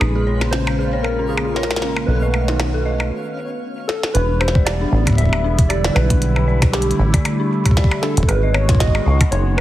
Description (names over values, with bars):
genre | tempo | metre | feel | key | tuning
IDM | 116 BPM | 4/4 | swing 56% on 16ths | unclear | A4 = 439 Hz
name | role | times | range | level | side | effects
warbly lo-fi synth keys | melody | 0.0-9.6 s | G4 to E5 | -24 LUFS | right 1 dB | chorus, tape echo
phased analog pad | sustained chords | 0.0-9.6 s | C#3 to F#4 | -24 LUFS | equal | phaser, chorus
deep acid bass | bass | 0.0-9.6 s | D1 to C#2 | -18 LUFS | equal | none
glitchy drum kit | drums | 0.0-9.6 s | hi-hat, percussion blips, snare drum | -24 LUFS | equal | small room ambience
twinkling granular texture | texture | 0.0-3.1 s | C#4 to E#5 | -32 LUFS | equal | built-in reverb, sidechain pumping
dark detuned synth bell | arpeggios | 0.2-9.6 s | C#4 to D#5 | -27 LUFS | left 2 dB | chorus, phaser, ping-pong delay
electronic kick drum | drums | 4.6-9.3 s | none | -15 LUFS | equal | small room ambience
room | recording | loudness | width
light reverb | heavily compressed radio sound | -15 LUFS | side -14 dB against mid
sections
0.0-4.1 A section; 4.1-9.6 B section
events
break 3.1-4.1; drum fill 3.9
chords
0.0 A#m7; 2.1 B7; 4.1 Em7; 8.3 G#m7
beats
| 0.01 0.53 1.04 1.56 | 2.08 2.60 3.11 3.63 | 4.15 4.67 5.18 5.70 | 6.22 6.74 7.25 7.77 | 8.29 8.80 9.32